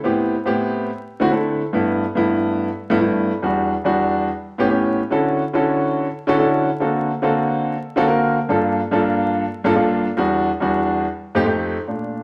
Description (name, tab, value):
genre	jazz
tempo	142 BPM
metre	4/4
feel	straight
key	D major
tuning	A4 = 440 Hz
part	warm grand piano	solo	0.0-12.2 s	E2 to Bb4	-20 LUFS	equal	none
room	wet large studio reverb, RT60 1.0 s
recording	vinyl crackle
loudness	-20 LUFS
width	mono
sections	0.0-11.9 A section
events	none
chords	0.0 Am9; 0.9 D7sus2; 1.7 G6; 3.4 Em7; 4.3 A7; 5.1 Dmaj9; 6.8 D7b13; 8.5 Gm9; 10.2 Em7; 11.0 F9